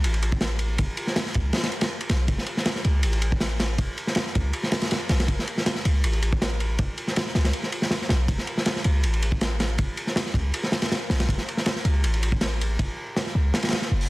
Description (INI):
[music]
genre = drum and bass, jungle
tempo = 160 BPM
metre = 4/4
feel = straight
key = F# minor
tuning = A4 = 436 Hz
[part]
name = warm 808-style bass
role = bass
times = 0.0-14.1 s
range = F#1 to C#2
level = -23 LUFS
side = equal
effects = tube saturation
[part]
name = crunchy breakbeat drum kit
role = drums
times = 0.0-14.1 s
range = hi-hat, kick drum, ride cymbal, snare drum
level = -24 LUFS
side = equal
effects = none
[sound]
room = little or no reverb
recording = dense, heavily limited modern master, vinyl crackle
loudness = -22 LUFS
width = side -20 dB against mid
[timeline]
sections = 0.0-2.3 A section; 2.3-14.1 A section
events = drop 0.0-2.3, 2.3-14.1; kick drops out 1.5-2.3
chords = none